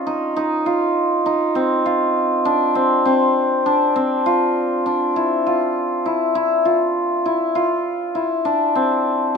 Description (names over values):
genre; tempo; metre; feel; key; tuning
contemporary instrumental, contemporary; 100 BPM; 5/4; straight; unclear; A4 = 440 Hz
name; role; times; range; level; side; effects
hammered dulcimer; solo; 0.0-9.4 s; C4 to F4; -16 LUFS; equal; none
room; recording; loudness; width
light reverb; close, detailed microphones; -16 LUFS; side -5 dB against mid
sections
0.0-7.6 A section; 7.6-9.4 A section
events
none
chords
0.0 Dbadd9; 1.6 F5; 4.6 Dmadd9